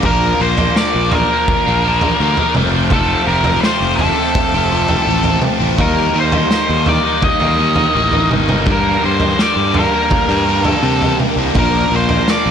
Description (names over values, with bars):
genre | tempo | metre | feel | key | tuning
psychedelic rock | 83 BPM | 4/4 | straight | unclear | A4 = 441 Hz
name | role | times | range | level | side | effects
string machine, violins | sustained chords | 0.0-12.5 s | Eb4 to D6 | -25 LUFS | right 2 dB | ensemble chorus
overdriven electric guitar | riff | 0.0-12.5 s | F2 to Eb4 | -17 LUFS | left 1 dB | phaser
fuzz fingered electric bass | bass | 0.0-12.5 s | F1 to C3 | -19 LUFS | equal | overdrive
vintage drum kit | drums | 0.0-12.4 s | kick drum, snare drum, toms | -19 LUFS | right 1 dB | none
octave-fuzz lead guitar | melody | 0.1-12.5 s | A4 to Eb5 | -18 LUFS | left 1 dB | distortion, digital delay
room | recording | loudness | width
light reverb, small room ambience | none | -12 LUFS | side -8 dB against mid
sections
0.0-12.5 A section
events
none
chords
0.0 Bb; 2.6 F6; 5.8 Eb; 8.7 Gm; 11.6 Bb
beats
| 0.03 0.75 1.47 2.19 | 2.91 3.63 4.35 5.07 | 5.79 6.51 7.23 7.95 | 8.67 9.39 10.12 10.84 | 11.56 12.28